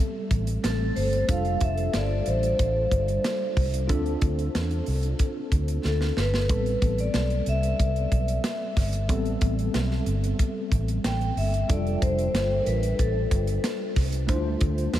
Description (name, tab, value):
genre	polished 1980s jazz-funk pop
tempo	92 BPM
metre	4/4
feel	straight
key	A minor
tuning	A4 = 441 Hz
part	tine electric piano	accompaniment	0.0-15.0 s	G3 to C5	-31 LUFS	left 1 dB	medium stereo tremolo, analog chorus
part	vintage muted fingered electric bass	bass	0.3-15.0 s	F1 to E2	-26 LUFS	equal	none
part	tight funk drum kit	drums	0.3-15.0 s	hi-hat, kick drum, snare drum	-28 LUFS	equal	none
part	vibraphone with medium mallets	melody	0.6-13.9 s	A4 to G5	-30 LUFS	equal	diffuse ambient delay
room	moderate huge ambient reverb, RT60 7.7 s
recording	dreamy mix soaked in reverb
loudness	-23 LUFS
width	side -12 dB against mid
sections	0.0-15.0 A section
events	drum fill 5.8-6.5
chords	0.0 Am9; 1.3 F69; 3.9 Dm7; 6.5 Am9; 11.7 F69; 14.3 Dm7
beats	0.64 | 1.29 1.94 2.59 3.24 | 3.89 4.54 5.19 5.84 | 6.49 7.14 7.79 8.44 | 9.09 9.74 10.39 11.04 | 11.69 12.34 12.99 13.64 | 14.29 14.94